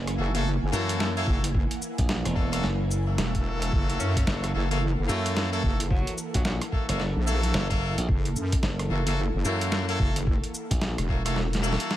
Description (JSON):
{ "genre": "glitch hop", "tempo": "110 BPM", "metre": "4/4", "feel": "swing 61% on 16ths", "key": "unclear", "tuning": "A4 = 441 Hz", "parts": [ { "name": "warm analog pad", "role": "sustained chords", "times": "0.0-12.0 s", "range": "E3 to G#5", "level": "-37 LUFS", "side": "equal", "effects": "chorus, vintage 12-bit sampler grit, sidechain pumping" }, { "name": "glassy slap bass", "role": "bass", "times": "0.0-11.0 s", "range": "E1 to F#2", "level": "-28 LUFS", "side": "equal", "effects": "none" }, { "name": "ethereal airy pad", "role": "texture", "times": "0.0-12.0 s", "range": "A#3 to F#5", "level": "-37 LUFS", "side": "right 1 dB", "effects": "ensemble chorus, built-in reverb, sidechain pumping" }, { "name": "boom bap sampler-style drum kit", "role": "drums", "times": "0.1-12.0 s", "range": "hi-hat, rim click, shaker, snare drum", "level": "-31 LUFS", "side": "equal", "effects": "none" }, { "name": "brilliant horn section", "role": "stabs", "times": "0.2-12.0 s", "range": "A#3 to A4", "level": "-32 LUFS", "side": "left 2 dB", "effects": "sidechain pumping, tape echo" }, { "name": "wobble bass", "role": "bass", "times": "0.2-11.8 s", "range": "E1 to F#2", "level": "-27 LUFS", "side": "equal", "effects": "chorus" }, { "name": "electronic kick drum", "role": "drums", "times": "1.3-11.2 s", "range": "none", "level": "-26 LUFS", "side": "equal", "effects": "none" }, { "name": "bright tenor saxophone", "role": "melody", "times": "4.0-6.6 s", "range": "F#3 to C#4", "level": "-38 LUFS", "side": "equal", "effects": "tape echo" } ], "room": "little or no reverb", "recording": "none", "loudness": "-24 LUFS", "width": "side -13 dB against mid", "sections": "0.0-12.0 A section", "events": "drum fill 11.4-12.0", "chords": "0.0 F#7#9" }